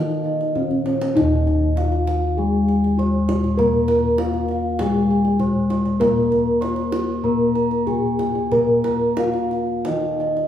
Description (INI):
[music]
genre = Javanese gamelan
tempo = 98 BPM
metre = 4/4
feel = uneven beats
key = Eb slendro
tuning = A4 = 439 Hz
[part]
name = gamelan-type bronze metallophone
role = melody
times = 0.0-10.5 s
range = Db4-45c to Db5-45c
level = -22 LUFS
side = equal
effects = none
[part]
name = gamelan-type bronze metallophone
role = accompaniment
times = 0.0-10.5 s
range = Eb3 to Bb3+25c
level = -22 LUFS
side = left 3 dB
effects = none
[part]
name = gamelan-type bronze metallophone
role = arpeggios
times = 0.0-10.5 s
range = Db5-45c to Db6-45c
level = -26 LUFS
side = right 3 dB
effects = none
[part]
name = gamelan-type bossed gongs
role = bass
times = 0.0-10.5 s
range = Eb2 to Bb4+25c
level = -24 LUFS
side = equal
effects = none
[part]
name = kendang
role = percussion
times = 0.2-10.5 s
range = none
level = -29 LUFS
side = right 2 dB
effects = none
[sound]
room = wet recital hall reverb, RT60 1.5 s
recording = recorded in a church or concert hall, small room ambience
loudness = -17 LUFS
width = side -10 dB against mid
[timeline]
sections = 0.0-10.5 A section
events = drum fill 0.7-1.2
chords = none